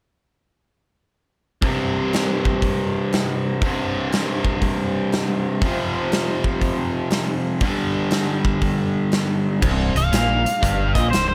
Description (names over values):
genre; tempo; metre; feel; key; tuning
blues rock power trio and southern rock; 120 BPM; 4/4; swing 65% on 8ths; unclear; A4 = 440 Hz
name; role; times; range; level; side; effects
cranked stack guitar; riff; 1.6-11.3 s; C2 to G3; -24 LUFS; equal; overdrive
big rock drum kit; drums; 1.6-11.3 s; crash cymbal, hi-hat, kick drum, snare drum; -26 LUFS; equal; none
growling fingered electric bass; bass; 9.6-11.3 s; C1 to Bb1; -25 LUFS; equal; overdrive
overdriven slide guitar; melody; 10.0-11.3 s; C5 to F5; -23 LUFS; equal; none
room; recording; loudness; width
light reverb, small room ambience; none; -21 LUFS; mono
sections
1.6-9.6 A section; 9.6-11.3 B section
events
none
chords
1.6 C5; 5.6 F5; 7.6 G5; 9.6 C5